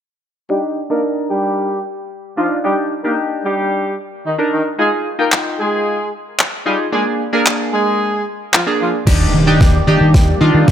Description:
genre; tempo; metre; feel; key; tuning
dance-pop; 112 BPM; 4/4; straight; Eb major; A4 = 440 Hz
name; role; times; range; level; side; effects
warm horn section; melody; 0.5-8.9 s; Eb3 to Bb4; -20 LUFS; equal; low-pass filter
chorused retro synth keys; accompaniment; 0.5-10.7 s; Bb3 to G5; -18 LUFS; equal; sidechain pumping, low-pass filter
smooth R&B drum kit; drums; 5.3-10.7 s; crash cymbal, handclaps, kick drum, snare drum; -14 LUFS; equal; none
filtered supersaw swell; sustained chords; 9.1-10.7 s; Eb3 to D5; -22 LUFS; equal; phaser, sidechain pumping
vintage muted fingered electric bass; bass; 9.1-10.7 s; Eb2 to Eb3; -13 LUFS; equal; sidechain pumping
riser and impact; sound effects; 9.1-10.7 s; none; -21 LUFS; equal; none
room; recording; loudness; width
light reverb, digital ambience; none; -14 LUFS; side -9 dB against mid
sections
0.5-9.1 A section; 9.1-10.7 B section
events
filter sweep 0.5-9.1; build-up 9.1-10.7; drum fill 9.1-10.7; impact 9.1-10.7; riser 9.1-10.7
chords
0.5 Ebmaj7; 4.8 Fm7; 6.9 Bb7; 9.1 Ebmaj7

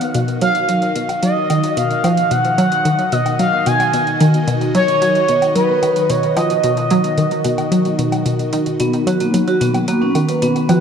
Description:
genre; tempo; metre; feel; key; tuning
ambient, sequencer-driven space music; 111 BPM; 4/4; straight; B lydian; A4 = 440 Hz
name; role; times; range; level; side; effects
phased analog pad; sustained chords; 0.0-10.8 s; D#3 to B5; -23 LUFS; left 1 dB; phaser, chorus
analog pluck; riff; 0.0-10.8 s; B2 to F#3; -18 LUFS; left 1 dB; chorus, analog delay
electronic hi-hat and woodblock; percussion; 0.0-10.8 s; none; -28 LUFS; equal; overdrive, analog delay
expressive synth lead; melody; 0.4-8.2 s; B4 to G#5; -17 LUFS; right 1 dB; wide subtle chorus, analog delay
vibraphone with medium mallets; arpeggios; 8.8-10.8 s; A#3 to B4; -17 LUFS; right 2 dB; auto-pan, analog delay
room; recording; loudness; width
wet lush hall reverb, RT60 3.0 s; dreamy mix soaked in reverb; -14 LUFS; side -7 dB against mid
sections
0.0-10.8 A section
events
fade-in on analog synth pad 0.0-10.8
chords
0.0 B

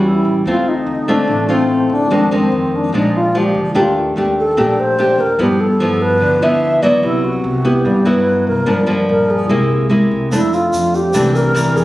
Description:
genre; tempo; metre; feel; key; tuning
bossa nova; 146 BPM; 4/4; straight; G minor; A4 = 438 Hz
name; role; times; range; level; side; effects
reedy wooden-headed alto flute; melody; 0.0-11.8 s; C4 to E5; -16 LUFS; equal; none
nylon-string guitar; accompaniment; 0.0-11.8 s; F2 to G4; -15 LUFS; left 1 dB; none
upright bass; bass; 0.0-11.8 s; G1 to G2; -23 LUFS; right 1 dB; none
tube shaker; percussion; 10.3-11.8 s; none; -30 LUFS; right 2 dB; none
room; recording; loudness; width
light reverb; recorded on a phone in the room, studio reverb; -12 LUFS; side -16 dB against mid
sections
0.0-11.8 A section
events
none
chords
0.5 Dm7; 2.1 Fm7; 2.9 Bb7; 3.7 Ebmaj7#11; 5.4 G13; 7.0 Cmaj7#11; 8.7 Gm7; 9.5 Caug7; 10.3 Fmaj13

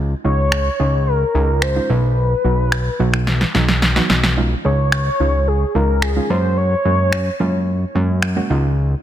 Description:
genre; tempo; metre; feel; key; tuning
dance-pop; 109 BPM; 4/4; straight; Db major; A4 = 439 Hz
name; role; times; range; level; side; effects
soft round pluck; accompaniment; 0.0-8.9 s; Gb3 to Ab4; -24 LUFS; right 4 dB; chorus
fat analog bass; bass; 0.0-8.9 s; Cb2 to Gb2; -17 LUFS; equal; none
warm velvety synth lead; melody; 0.2-7.6 s; Ab4 to Db5; -21 LUFS; left 1 dB; chorus, ping-pong delay
electronic finger snaps and snare drum; drums; 0.5-8.4 s; none; -20 LUFS; equal; overdrive, soft clipping on snare
room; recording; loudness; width
digital ambience; dense, heavily limited modern master; -15 LUFS; side -11 dB against mid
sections
0.0-9.0 A section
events
drum fill 3.3-4.4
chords
0.0 Dbadd9; 1.9 Cb; 4.4 Dbadd9; 6.3 Gbadd9; 8.5 Dbadd9

